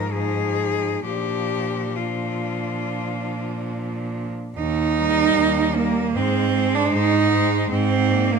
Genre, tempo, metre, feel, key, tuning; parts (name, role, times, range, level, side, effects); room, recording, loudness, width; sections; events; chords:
classical, lyrical piece for cello ensemble; 65-77 BPM; 4/4; rubato; Eb major; A4 = 440 Hz
rich cello; melody; 0.0-8.4 s; F4 to D5; -28 LUFS; left 10 dB
rich cello; second line; 0.0-8.4 s; Bb3 to Eb4; -22 LUFS; right 8 dB
warm cello; accompaniment; 0.0-8.4 s; F3 to Bb3; -30 LUFS; left 4 dB
clear cello; bass; 0.0-8.4 s; Eb2 to Bb2; -25 LUFS; equal
moderate scoring stage reverb, RT60 1.5 s; close, detailed microphones; -19 LUFS; side -5 dB against mid
0.0-4.6 A section; 4.6-8.4 B section
0.0 Fm7/Ab; 1.0 Bb; 4.6 Eb; 6.1 Ab; 7.7 Bb7/Ab